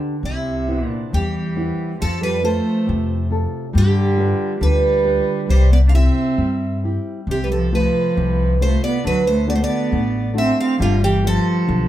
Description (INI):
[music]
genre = fado-style ballad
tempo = 68 BPM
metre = 2/4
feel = rubato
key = C major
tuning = A4 = 440 Hz
[part]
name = nylon-string guitar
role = accompaniment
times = 0.0-11.9 s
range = C3 to B4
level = -24 LUFS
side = left 3 dB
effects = none
[part]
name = rich cello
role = second line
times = 0.2-11.9 s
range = C3 to D4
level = -22 LUFS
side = right 3 dB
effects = none
[part]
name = upright bass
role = bass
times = 0.2-11.9 s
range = G1 to G2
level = -19 LUFS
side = equal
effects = none
[part]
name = picked twelve-string acoustic guitar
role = melody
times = 0.3-11.9 s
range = E4 to F5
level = -22 LUFS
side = right 2 dB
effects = none
[sound]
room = moderate studio reverb, RT60 0.6 s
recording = band playing live in one room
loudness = -16 LUFS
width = side -12 dB against mid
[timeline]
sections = 0.0-11.9 A section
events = none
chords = 0.2 Cmaj7; 2.0 F; 3.7 G7; 5.5 C; 7.3 F/C; 9.0 D; 10.8 G7